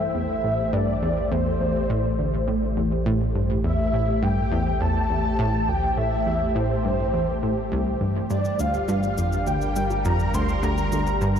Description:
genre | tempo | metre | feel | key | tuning
ambient, sequencer-driven space music | 103 BPM | 4/4 | straight | A phrygian | A4 = 441 Hz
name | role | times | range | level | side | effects
breathy flute-like synth lead | melody | 0.0-11.4 s | C5 to C6 | -27 LUFS | equal | ensemble chorus, tape echo
sweeping resonant pad | sustained chords | 0.0-11.4 s | E3 to C5 | -28 LUFS | left 1 dB | chorus
analog pluck | riff | 0.0-11.4 s | C2 to A2 | -25 LUFS | equal | chorus, tape echo
round analog bass | bass | 0.0-11.4 s | G1 to A1 | -29 LUFS | equal | none
cabasa and bongos | percussion | 8.3-11.4 s | none | -39 LUFS | left 6 dB | tape echo
room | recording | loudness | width
moderate huge ambient reverb, RT60 9.3 s | dark, warm production | -21 LUFS | side -8 dB against mid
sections
0.0-11.4 A section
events
none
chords
0.0 Am7; 8.3 Gm

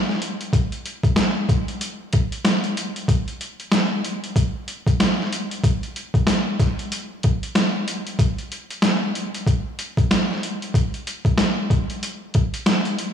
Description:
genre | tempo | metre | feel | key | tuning
hip hop | 94 BPM | 4/4 | swing 60% on 16ths | none | none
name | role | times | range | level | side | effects
boom bap sampler-style drum kit | drums | 0.1-13.1 s | hi-hat, kick drum, snare drum | -20 LUFS | equal | overdrive
room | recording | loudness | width
wet echo chamber reverb, RT60 2.1 s | blown-out, overdriven recording, overdrive, studio ambience | -20 LUFS | side -8 dB against mid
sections
0.0-13.1 A section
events
none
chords
none

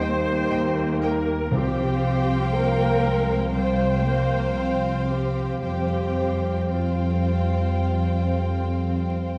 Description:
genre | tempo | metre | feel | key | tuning
cinematic, emotional film score for orchestra | 55-60 BPM | 4/4 | rubato | unclear | A4 = 440 Hz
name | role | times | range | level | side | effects
clear studio violin section | melody | 0.0-9.4 s | G5 | -39 LUFS | equal | none
dark clarinet | second line | 0.0-9.4 s | C5 to Eb5 | -35 LUFS | equal | none
large flute ensemble | second line | 0.0-9.4 s | F5 to G5 | -40 LUFS | equal | none
rich studio violin section | second line | 0.0-9.4 s | C5 to G5 | -36 LUFS | equal | none
rich studio viola section | accompaniment | 0.0-9.4 s | F4 to C5 | -32 LUFS | equal | none
dark French horn section | sustained chords | 0.0-9.4 s | F3 to Eb4 | -33 LUFS | equal | none
concert harp | arpeggios | 0.0-9.4 s | C3 to G4 | -32 LUFS | equal | none
rich studio double bass section | bass | 0.0-9.4 s | C2 to F2 | -28 LUFS | equal | none
warm studio cello section | bass | 0.0-9.4 s | G3 to C4 | -32 LUFS | equal | none
timpani | percussion | 1.5-3.0 s | C3 | -31 LUFS | equal | none
room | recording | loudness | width
wet recital hall reverb, RT60 1.5 s | dark, warm production, vinyl crackle | -23 LUFS | mono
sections
0.0-9.4 A section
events
none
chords
0.0 Eb; 1.5 Csus4; 5.6 Fsus2

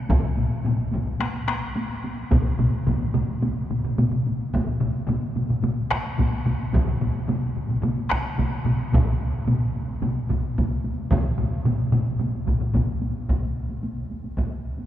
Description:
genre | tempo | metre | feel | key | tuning
japanese traditional, taiko drum ensemble | 109 BPM | 4/4 | straight | none | none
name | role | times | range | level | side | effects
taiko ensemble | percussion | 0.1-14.9 s | none | -30 LUFS | equal | none
taiko ensemble | percussion | 0.1-12.9 s | none | -27 LUFS | left 3 dB | none
taiko ensemble | percussion | 0.1-14.5 s | none | -26 LUFS | equal | none
solo taiko drums | percussion | 2.3-12.9 s | none | -28 LUFS | right 2 dB | none
room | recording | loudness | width
wet cathedral reverb, RT60 5.5 s | recorded in a church or concert hall | -22 LUFS | side -12 dB against mid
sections
0.0-4.5 A section; 4.5-13.3 B section; 13.3-14.9 C section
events
speeding up 0.0-14.9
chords
none

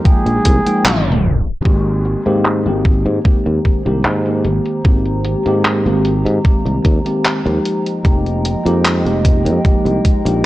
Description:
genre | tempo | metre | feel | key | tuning
vaporwave | 75 BPM | 4/4 | straight | Ab major | A4 = 438 Hz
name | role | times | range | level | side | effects
tine electric piano | accompaniment | 0.0-10.5 s | Eb3 to G5 | -18 LUFS | equal | lush chorus, tape echo
warm flugelhorn | melody | 0.1-1.2 s | Ab4 | -24 LUFS | right 1 dB | tape echo
detuned 8-bit digital drum machine | drums | 0.1-10.4 s | crash cymbal, handclaps, hi-hat | -20 LUFS | equal | low-pass filter on snare, vintage 12-bit sampler grit, low-pass filter on hats, low-pass filter on cymbals
electronic kick drum | drums | 0.1-10.2 s | none | -12 LUFS | equal | vintage 12-bit sampler grit
sustaining fretless electric bass | bass | 0.3-10.5 s | F1 to Ab2 | -17 LUFS | equal | none
warbly tape-like pad | sustained chords | 3.2-10.5 s | Ab3 to Bb5 | -25 LUFS | equal | chorus, built-in reverb, vintage 12-bit sampler grit
room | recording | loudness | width
light reverb | dry, gritty hardware recording, cassette tape, tape stop | -12 LUFS | side -16 dB against mid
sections
0.0-1.6 A section; 1.6-10.5 B section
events
band accent 0.8-1.2; tape stop 0.8-1.6; filter sweep on drum 1.6-10.5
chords
0.0 Fm11; 1.6 Abmaj9; 7.6 Fm11

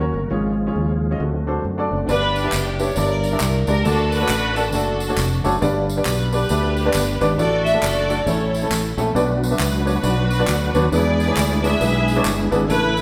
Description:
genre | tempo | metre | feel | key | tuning
uptempo gospel | 136 BPM | 4/4 | swing 61% on 8ths | unclear | A4 = 440 Hz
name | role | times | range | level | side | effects
clear concert grand piano | accompaniment | 0.0-13.0 s | G2 to E5 | -25 LUFS | equal | none
tonewheel organ | sustained chords | 0.0-2.1, 9.2-13.0 s | Db3 to B4 | -27 LUFS | equal | fast rotary speaker, chorus vibrato
fingered electric bass | bass | 0.0-13.0 s | F1 to F#2 | -24 LUFS | equal | none
rich studio string section | melody | 2.1-13.0 s | D4 to E5 | -25 LUFS | equal | none
tambourine and handclaps | percussion | 2.1-13.0 s | none | -32 LUFS | equal | none
room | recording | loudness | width
wet stone room reverb, RT60 1.3 s | band playing live in one room | -20 LUFS | mono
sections
0.0-2.1 A section; 2.1-13.0 B section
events
none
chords
0.3 Db/Ab; 1.2 D7; 2.1 G; 3.0 Gm6; 3.9 D; 5.6 G; 7.4 D/A; 8.3 A; 9.2 Bm; 10.9 E7

